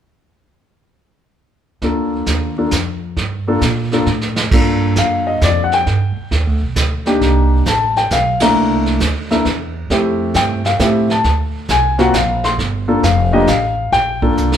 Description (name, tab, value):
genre	jazz piano trio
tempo	134 BPM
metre	3/4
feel	swing 67% on 8ths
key	G minor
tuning	A4 = 441 Hz
part	warm grand piano	melody	1.8-14.6 s	A3 to C6	-15 LUFS	left 2 dB	none
part	upright bass	bass	1.8-14.6 s	F1 to Bb2	-18 LUFS	right 1 dB	none
part	vintage brush drum kit	drums	1.8-14.6 s	brushed snare drum, crash cymbal, hi-hat, kick drum, ride cymbal, snare drum	-20 LUFS	right 2 dB	none
room	moderate large studio reverb, RT60 1.2 s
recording	band playing live in one room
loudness	-13 LUFS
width	side -9 dB against mid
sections	1.8-4.5 A section; 4.5-14.6 B section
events	drum fill 4.1-4.5, 14.4; band accent 8.3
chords	1.8 Gm7/D; 4.5 Gm7; 5.9 G5; 7.2 Cm9; 8.6 C13; 9.9 Fmaj7; 11.2 Dm7b13; 12.6 Gm7